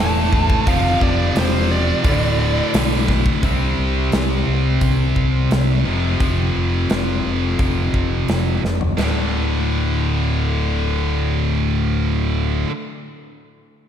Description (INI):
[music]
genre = hard rock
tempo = 87 BPM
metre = 4/4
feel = straight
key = D minor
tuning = A4 = 441 Hz
[part]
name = high-gain lead guitar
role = melody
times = 0.0-2.7 s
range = C5 to A5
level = -23 LUFS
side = right 2 dB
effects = distortion, slapback echo
[part]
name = distorted electric guitar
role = riff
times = 0.0-12.7 s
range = D2 to C4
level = -23 LUFS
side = left 8 dB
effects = overdrive, slapback echo
[part]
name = scooped high-gain guitar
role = riff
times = 0.0-12.7 s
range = D2 to C4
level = -23 LUFS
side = right 6 dB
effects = distortion, slapback echo
[part]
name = overdriven fingered electric bass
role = bass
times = 0.0-12.6 s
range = D1 to C2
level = -21 LUFS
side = equal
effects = none
[part]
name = big rock drum kit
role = drums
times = 0.3-9.1 s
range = hi-hat, kick drum, snare drum, splash cymbal, toms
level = -21 LUFS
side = equal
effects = none
[sound]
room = moderate concert hall reverb, RT60 2.5 s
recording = big arena sound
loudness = -16 LUFS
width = side -9 dB against mid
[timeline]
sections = 0.0-3.4 A section; 3.4-9.0 B section; 9.0-11.8 C section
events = drum fill 8.6-9.0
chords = 0.0 A5; 0.7 F5; 2.1 D5; 3.4 C5; 5.9 F5; 9.0 D5